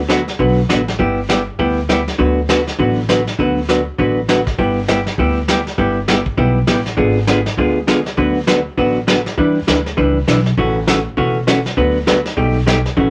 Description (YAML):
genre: country, western swing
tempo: 200 BPM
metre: 4/4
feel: swing 61% on 8ths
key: D major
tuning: A4 = 440 Hz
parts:
  - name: upright bass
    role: bass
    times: 0.0-13.1 s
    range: E1 to E2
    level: -23 LUFS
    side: equal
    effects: none
  - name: vintage hollow-body jazz guitar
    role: accompaniment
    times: 0.1-13.1 s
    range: B2 to B4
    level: -18 LUFS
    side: equal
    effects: none
  - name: vintage brush drum kit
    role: drums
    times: 0.1-13.1 s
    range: brushed snare drum, hi-hat, kick drum, snare drum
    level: -23 LUFS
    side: equal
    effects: none
room: wet small room ambience, RT60 0.5 s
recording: none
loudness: -16 LUFS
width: mono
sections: 0.0-13.1 A section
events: none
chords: 0.0 D6; 1.0 G6; 2.2 D6; 4.6 G6; 7.0 G#dim7; 8.2 D6; 9.4 Em7; 10.6 A6; 11.8 D6; 12.4 Baug7